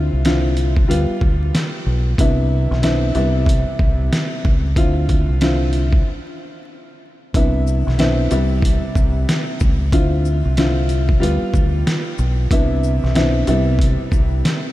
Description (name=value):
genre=hip hop, boom-bap hip-hop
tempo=93 BPM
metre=4/4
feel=swing 62% on 16ths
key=C major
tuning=A4 = 437 Hz
part: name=dark upright piano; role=accompaniment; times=0.0-14.7 s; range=C3 to F4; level=-21 LUFS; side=left 1 dB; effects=none
part: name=deep dub fingered electric bass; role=bass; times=0.0-14.4 s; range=B1 to D2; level=-18 LUFS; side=equal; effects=none
part: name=trip hop sampler-style drum kit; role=drums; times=0.2-14.6 s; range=hi-hat, kick drum, shaker, snare drum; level=-19 LUFS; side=equal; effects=none
room=light reverb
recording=vinyl crackle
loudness=-15 LUFS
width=side -16 dB against mid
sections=0.0-7.3 A section; 7.3-14.7 A section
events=break 6.1-7.3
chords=0.0 Dm9; 0.9 G7/D; 2.2 Cmaj9; 3.2 Cmaj7; 4.8 Dm9; 6.1 N.C.; 7.3 Cmaj9; 8.3 Cmaj7; 9.9 Dm9; 11.2 G7/D; 12.5 Cmaj9; 13.5 Cmaj7